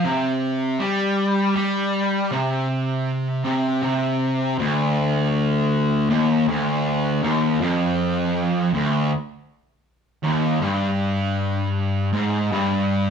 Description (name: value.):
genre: metal.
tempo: 79 BPM.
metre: 4/4.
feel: straight.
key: D minor.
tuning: A4 = 440 Hz.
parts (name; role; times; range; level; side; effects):
fuzz guitar; solo; 0.0-13.1 s; D2 to G3; -19 LUFS; equal; distortion.
room: light reverb.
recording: band playing live in one room, faint mains hum.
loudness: -19 LUFS.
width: side -7 dB against mid.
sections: 0.0-4.6 A section; 4.6-13.1 B section.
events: none.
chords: none.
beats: 0.04 0.80 | 1.55 2.31 3.07 3.82 | 4.58 5.33 6.09 6.84 | 7.60 8.35 9.11 9.86 | 10.62 11.37 12.13 12.88.